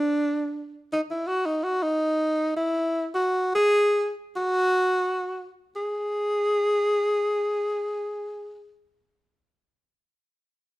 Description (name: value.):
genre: jazz.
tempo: free time.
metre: none.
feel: none.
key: unclear.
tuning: A4 = 440 Hz.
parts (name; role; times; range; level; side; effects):
mellow tenor saxophone; solo; 0.0-8.7 s; D4 to G#4; -23 LUFS; equal; none.
room: light reverb.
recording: dark, warm production.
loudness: -23 LUFS.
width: side -18 dB against mid.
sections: 0.0-5.7 A section; 5.7-10.8 B section.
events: slowing down 0.9-5.7.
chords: none.